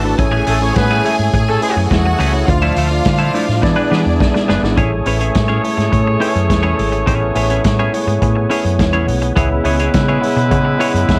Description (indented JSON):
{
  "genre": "disco",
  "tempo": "105 BPM",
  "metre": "4/4",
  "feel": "straight",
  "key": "A major",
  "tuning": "A4 = 440 Hz",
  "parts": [
    { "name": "clear studio string section", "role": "second line", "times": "0.0-4.8 s", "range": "D4 to A5", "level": "-24 LUFS", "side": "equal", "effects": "none" },
    { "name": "mellow tine electric piano", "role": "accompaniment", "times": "0.0-11.2 s", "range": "A3 to F#5", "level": "-22 LUFS", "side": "equal", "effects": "none" },
    { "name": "semi-hollow electric guitar", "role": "accompaniment", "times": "0.0-11.1 s", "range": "E3 to C#5", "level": "-24 LUFS", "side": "equal", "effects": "none" },
    { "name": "overdriven tonewheel organ", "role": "sustained chords", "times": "0.0-11.2 s", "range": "C#3 to A4", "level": "-26 LUFS", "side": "equal", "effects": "chorus vibrato, lush chorus" },
    { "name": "hollow-body short-scale fingered electric bass", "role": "bass", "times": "0.0-11.2 s", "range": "F#1 to E3", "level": "-20 LUFS", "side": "equal", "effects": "none" },
    { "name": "vintage drum kit", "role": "drums", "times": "0.2-11.2 s", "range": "hi-hat, kick drum, snare drum", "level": "-21 LUFS", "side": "equal", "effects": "none" },
    { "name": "clear horn section", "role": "stabs", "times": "0.5-11.2 s", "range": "G#3 to C#5", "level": "-23 LUFS", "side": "equal", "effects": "none" }
  ],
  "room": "light reverb",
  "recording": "none",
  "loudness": "-15 LUFS",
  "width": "mono",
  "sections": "0.0-4.8 A section; 4.8-11.2 B section",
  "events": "drum fill 3.6-4.8; tine electric piano fill 8.5-9.4",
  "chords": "0.2 Amaj7; 2.5 Dmadd9; 3.6 E7; 4.8 Amaj7; 9.4 C#m7"
}